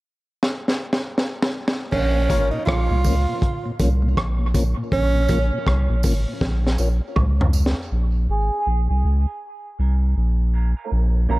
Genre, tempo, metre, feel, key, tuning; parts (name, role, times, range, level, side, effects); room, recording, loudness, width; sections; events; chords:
dub reggae; 80 BPM; 4/4; swing 60% on 16ths; Bb minor; A4 = 440 Hz
crunchy breakbeat drum kit; drums; 0.4-7.8 s; crash cymbal, hi-hat, kick drum, rim click, snare drum, toms; -23 LUFS; equal
warm tenor saxophone; second line; 1.9-5.5 s; Db4 to F4; -25 LUFS; right 4 dB; high-pass filter, dub echo
soft dub sub bass; bass; 1.9-11.4 s; Ab1 to Db2; -19 LUFS; equal
mellow tonewheel organ; accompaniment; 2.2-7.8 s; Bb2 to Db4; -29 LUFS; left 2 dB; slow rotary speaker, high-pass filter, dub echo
bright baby grand piano; stabs; 2.3-2.5 s; Db4 to Db5; -29 LUFS; left 4 dB; dub echo
tambourine and woodblock; percussion; 2.3-7.7 s; -33 LUFS; right 5 dB; high-pass filter on perc, dub echo
melodica; melody; 8.3-8.7 s; Ab4; -28 LUFS; right 2 dB; low-pass filter, dub echo
semi-hollow electric guitar; accompaniment; 8.3-11.4 s; Bb3 to Bb4; -30 LUFS; right 7 dB; high-pass filter, low-pass filter
light reverb, small room reverb; -18 LUFS; side -20 dB against mid
0.0-1.9 A section; 1.9-7.9 B section; 7.9-11.4 C section
drum fill 0.4-1.9, 6.4-7.9; filter sweep 7.9-11.4
0.0 N.C.; 1.9 Bbm